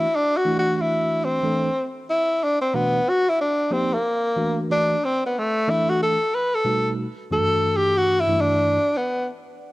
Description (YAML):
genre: hip hop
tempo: 92 BPM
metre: 4/4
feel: swing 61% on 16ths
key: unclear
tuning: A4 = 440 Hz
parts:
  - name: warm tenor saxophone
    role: melody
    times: 0.0-9.3 s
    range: A3 to B4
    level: -20 LUFS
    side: equal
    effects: cassette tape
  - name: mellow tine electric piano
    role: accompaniment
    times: 0.0-8.8 s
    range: F#2 to A4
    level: -26 LUFS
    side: right 1 dB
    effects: medium stereo tremolo, cassette tape
room: light reverb, studio ambience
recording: home recording on cassette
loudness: -19 LUFS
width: side -18 dB against mid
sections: 0.0-9.7 A section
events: tenor saxophone solo 0.0-9.7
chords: 0.0 D9/E; 2.1 Bm7; 4.0 F#7alt/E; 6.7 B7b13; 7.3 Em9